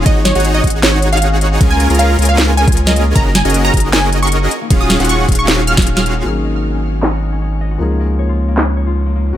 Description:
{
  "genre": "future bass",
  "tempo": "155 BPM",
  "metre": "4/4",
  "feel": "half-time",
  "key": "Db major",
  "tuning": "A4 = 438 Hz",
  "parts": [
    { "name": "concert harp", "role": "arpeggios", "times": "0.0-9.4 s", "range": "Bb3 to Eb5", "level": "-24 LUFS", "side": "left 6 dB", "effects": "sidechain pumping, low-pass filter, dub echo" },
    { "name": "supersaw chords", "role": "riff", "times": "0.0-6.2 s", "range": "Db4 to Bb5", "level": "-19 LUFS", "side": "right 1 dB", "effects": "sidechain pumping" },
    { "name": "saturated sub bass", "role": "bass", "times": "0.0-9.4 s", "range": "Eb1 to Db2", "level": "-15 LUFS", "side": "equal", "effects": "sidechain pumping" },
    { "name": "wide unison pluck", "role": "melody", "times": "0.1-6.1 s", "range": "Db5 to F6", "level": "-19 LUFS", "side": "right 1 dB", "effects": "sidechain pumping, ping-pong delay" },
    { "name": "electronic kick drum", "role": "drums", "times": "0.1-5.8 s", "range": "none", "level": "-12 LUFS", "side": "equal", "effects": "overdrive" },
    { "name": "trap drum kit", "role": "drums", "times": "0.1-8.7 s", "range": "crash cymbal, handclaps, hi-hat, ride cymbal, snare drum", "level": "-17 LUFS", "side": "equal", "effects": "low-pass filter on hats, low-pass filter on cymbals, low-pass filter on snare" },
    { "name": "felt-muted upright piano", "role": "accompaniment", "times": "6.2-9.4 s", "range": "F3 to Ab4", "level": "-22 LUFS", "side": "left 4 dB", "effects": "sidechain pumping, dub echo" }
  ],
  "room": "digital ambience",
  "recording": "none",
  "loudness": "-11 LUFS",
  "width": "side -12 dB against mid",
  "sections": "0.0-6.3 A section; 6.3-9.4 B section",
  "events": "drop 0.0-6.3; break 5.9-6.3; filter sweep on drum 6.3-9.4",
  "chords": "0.1 Ab7sus4; 1.6 Db6; 3.2 Gb69; 4.5 Ebm11; 6.3 Ab7sus4; 7.8 Db6",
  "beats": "| 0.06 0.45 0.83 1.22 | 1.61 2.00 2.38 2.77 | 3.16 3.54 3.93 4.32 | 4.71 5.09 5.48 5.87 | 6.25 6.64 7.03 7.42 | 7.80 8.19 8.58 8.96 | 9.35"
}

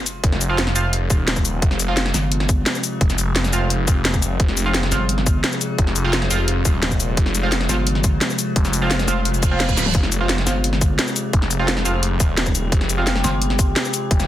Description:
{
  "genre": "dark technical drum and bass",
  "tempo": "173 BPM",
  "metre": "4/4",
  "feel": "straight",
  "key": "F minor",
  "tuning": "A4 = 444 Hz",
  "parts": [
    { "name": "metallic inharmonic drone", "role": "sustained chords", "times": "0.0-14.3 s", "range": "C3 to G4", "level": "-26 LUFS", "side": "left 2 dB", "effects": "chorus, built-in reverb, sidechain pumping" },
    { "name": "impact and reverse cymbal", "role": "sound effects", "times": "0.0-0.2, 9.4-9.9 s", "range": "none", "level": "-27 LUFS", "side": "right 6 dB", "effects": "none" },
    { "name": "drum and bass drum kit", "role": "drums", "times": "0.1-14.3 s", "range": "cabasa, hi-hat, snare drum, toms", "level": "-21 LUFS", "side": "left 1 dB", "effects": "none" },
    { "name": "phased detuned saw bass", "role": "bass", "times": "0.2-14.3 s", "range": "Eb1 to F1", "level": "-22 LUFS", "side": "equal", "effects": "phaser, tube saturation" },
    { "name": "electronic kick drum", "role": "drums", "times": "0.2-14.2 s", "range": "none", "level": "-18 LUFS", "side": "equal", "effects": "overdrive" },
    { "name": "band-passed chord stab", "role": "stabs", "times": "0.5-13.3 s", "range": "F3 to F4", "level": "-26 LUFS", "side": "right 3 dB", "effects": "chorus, phaser, digital delay" },
    { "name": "pulsing pluck wobble bass", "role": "bass", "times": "2.1-2.6, 4.9-5.4, 7.7-11.0, 13.2-13.7 s", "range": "F1 to G1", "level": "-21 LUFS", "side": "equal", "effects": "chorus" }
  ],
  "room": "light reverb, digital ambience",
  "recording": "dense, heavily limited modern master",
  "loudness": "-17 LUFS",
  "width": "side -13 dB against mid",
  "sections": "0.0-14.3 A section",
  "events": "impact 0.0; reverse cymbal 9.4-9.9; drum fill 9.8",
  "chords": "0.0 Fm",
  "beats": "| 0.23 0.58 0.93 1.28 | 1.62 1.97 2.32 2.66 | 3.01 3.36 3.70 4.05 | 4.40 4.74 5.09 5.44 | 5.78 6.13 6.48 6.83 | 7.17 7.52 7.87 8.21 | 8.56 8.91 9.25 9.60 | 9.95 10.29 10.64 10.99 | 11.33 11.68 12.03 12.37 | 12.72 13.07 13.41 13.76 | 14.11"
}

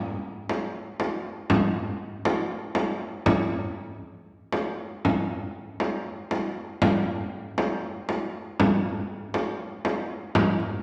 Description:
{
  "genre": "contemporary instrumental, contemporary",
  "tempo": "238 BPM (eighths)",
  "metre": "7/8",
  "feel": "straight",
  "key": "none",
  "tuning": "none",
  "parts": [
    { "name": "frame drum", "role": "percussion", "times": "0.5-10.7 s", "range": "none", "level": "-28 LUFS", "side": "equal", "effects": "none" }
  ],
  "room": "wet recital hall reverb, RT60 1.6 s",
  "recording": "none",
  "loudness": "-28 LUFS",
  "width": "mono",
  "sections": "0.0-10.8 A section",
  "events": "none",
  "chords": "none",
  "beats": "0.00 0.25 0.50 0.75 1.00 1.25 | 1.50 1.75 2.00 2.26 2.51 2.76 3.02 | 3.27 3.52 3.77 4.03 4.29 4.54 4.80 | 5.05 5.31 5.56 5.81 6.07 6.32 6.57 | 6.83 7.08 7.33 7.58 7.84 8.09 8.34 | 8.59 8.84 9.09 9.34 9.60 9.85 10.10 | 10.35 10.61"
}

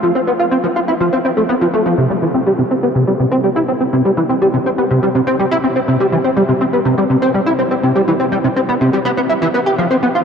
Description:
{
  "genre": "ambient",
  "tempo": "123 BPM",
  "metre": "4/4",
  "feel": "straight",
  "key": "C major",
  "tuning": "A4 = 440 Hz",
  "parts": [
    { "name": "plucky analog bass", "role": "solo", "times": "0.0-10.2 s", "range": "C3 to G4", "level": "-12 LUFS", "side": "equal", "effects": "ensemble chorus, analog delay" }
  ],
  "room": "wet huge ambient reverb, RT60 7.8 s",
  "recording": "dark, warm production",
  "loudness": "-12 LUFS",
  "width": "side -6 dB against mid",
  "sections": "0.0-10.2 A section",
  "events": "none",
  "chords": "none",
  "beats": "| 0.03 0.52 1.00 1.49 | 1.98 2.47 2.95 3.44 | 3.93 4.42 4.91 5.39 | 5.88 6.37 6.86 7.34 | 7.83 8.32 8.81 9.30 | 9.78"
}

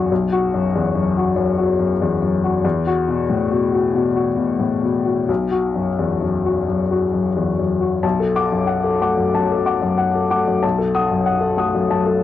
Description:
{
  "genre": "neoclassical minimalist piano",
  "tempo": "86-96 BPM",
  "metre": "4/4",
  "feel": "rubato",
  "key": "B minor",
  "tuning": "A4 = 440 Hz",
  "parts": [
    { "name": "warm upright piano", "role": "solo", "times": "0.0-12.2 s", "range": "B1 to D#6", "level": "-16 LUFS", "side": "left 3 dB", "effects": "cassette tape" }
  ],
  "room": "moderate booth ambience, RT60 0.3 s",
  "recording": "home recording on cassette",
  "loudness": "-16 LUFS",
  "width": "side -12 dB against mid",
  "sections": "0.0-8.0 A section; 8.0-12.2 A section",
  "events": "none",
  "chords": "0.0 B5; 2.6 Esus2; 5.3 B5; 8.0 Bm7; 10.6 B7",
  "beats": "| 0.11 0.73 1.36 2.00 | 2.64 3.28 3.94 4.60 | 5.29 5.98 6.67 7.36 | 8.03 8.68 9.33 9.98 | 10.63 11.27 11.91"
}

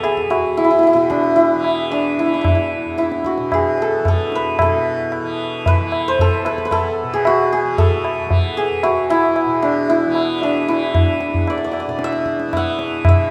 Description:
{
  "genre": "indian classical, Hindustani",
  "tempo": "113 BPM",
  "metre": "4/4",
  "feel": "straight",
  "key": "unclear",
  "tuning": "A4 = 440 Hz",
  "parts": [
    { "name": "santur", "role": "melody", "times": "0.0-13.3 s", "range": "D4 to F#5", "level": "-20 LUFS", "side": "equal", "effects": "none" },
    { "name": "tanpura", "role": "drone", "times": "0.0-13.3 s", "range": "E2 to E3", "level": "-28 LUFS", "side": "equal", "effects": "none" },
    { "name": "tabla", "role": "percussion", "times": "0.0-13.2 s", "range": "none", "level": "-22 LUFS", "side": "equal", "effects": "none" }
  ],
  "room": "moderate scoring stage reverb, RT60 1.5 s",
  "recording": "none",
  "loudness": "-17 LUFS",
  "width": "mono",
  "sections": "0.0-4.6 A section; 4.6-13.1 B section",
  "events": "speeding up 0.0-13.3",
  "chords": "none",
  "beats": "| 0.30 0.84 1.38 1.92 | 2.45 2.99 3.52 4.06 | 4.59 5.13 5.66 6.19 | 6.72 7.25 7.79 8.32 | 8.85 9.37 9.90 10.43 | 10.95 11.48 12.00 12.53 | 13.05"
}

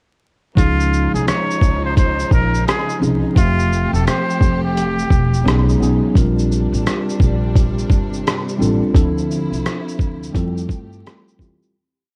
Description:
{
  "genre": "lo-fi hip hop",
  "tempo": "86 BPM",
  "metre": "4/4",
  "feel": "swing 63% on 16ths",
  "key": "F major",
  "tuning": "A4 = 442 Hz",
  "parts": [
    { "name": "trumpet with straight mute", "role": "melody", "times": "0.6-5.6 s", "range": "F4 to Db5", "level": "-24 LUFS", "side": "equal", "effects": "none" },
    { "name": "mellow tine electric piano", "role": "accompaniment", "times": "0.6-11.8 s", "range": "F3 to E5", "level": "-23 LUFS", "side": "equal", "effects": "none" },
    { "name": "warm studio string section", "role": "sustained chords", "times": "0.6-11.7 s", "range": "C3 to G4", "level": "-30 LUFS", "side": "equal", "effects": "none" },
    { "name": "upright bass", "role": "bass", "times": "0.6-11.6 s", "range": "E1 to F2", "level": "-22 LUFS", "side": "equal", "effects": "none" },
    { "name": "lo-fi sampler-style drum kit", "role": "drums", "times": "0.6-11.7 s", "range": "hi-hat, kick drum, rim click, shaker", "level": "-19 LUFS", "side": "equal", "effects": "overdrive" }
  ],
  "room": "light reverb, small room ambience",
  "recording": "vinyl crackle",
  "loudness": "-17 LUFS",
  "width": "mono",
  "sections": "0.6-11.7 A section",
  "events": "fade-out 8.9-11.7",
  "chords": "0.6 Dbmaj9; 3.4 Fmaj9; 5.5 B69; 6.2 Bb69; 8.9 Dm9; 10.3 Fmaj9",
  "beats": "| 0.57 1.27 1.97 2.67 | 3.36 4.06 4.76 5.46 | 6.15 6.85 7.55 8.25 | 8.95 9.64 10.34 11.04"
}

